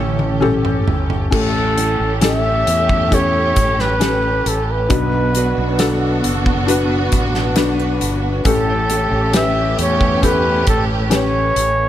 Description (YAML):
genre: pop ballad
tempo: 67 BPM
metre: 4/4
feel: straight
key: unclear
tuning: A4 = 440 Hz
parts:
  - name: breathy flugelhorn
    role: melody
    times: 0.0-11.9 s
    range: A4 to E5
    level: -19 LUFS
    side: equal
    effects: none
  - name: felt-muted upright piano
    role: accompaniment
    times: 0.0-11.9 s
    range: A2 to B4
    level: -21 LUFS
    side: left 4 dB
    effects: none
  - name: warm studio string section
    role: sustained chords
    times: 0.0-11.9 s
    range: A3 to G4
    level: -23 LUFS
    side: right 2 dB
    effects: none
  - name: nylon-string guitar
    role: arpeggios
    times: 0.0-11.9 s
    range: A2 to B4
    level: -27 LUFS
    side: right 6 dB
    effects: none
  - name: fretless electric bass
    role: bass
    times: 0.0-11.9 s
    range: F#1 to E2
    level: -21 LUFS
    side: equal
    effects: none
  - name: loose indie drum kit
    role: drums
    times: 0.2-11.8 s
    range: crash cymbal, hi-hat, kick drum, snare drum, toms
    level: -20 LUFS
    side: equal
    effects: none
room: light reverb, small room ambience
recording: none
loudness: -14 LUFS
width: side -12 dB against mid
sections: 0.0-1.3 A section; 1.3-11.9 B section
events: drum fill 0.0-1.3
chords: 0.0 A7; 4.9 Bm; 8.5 A7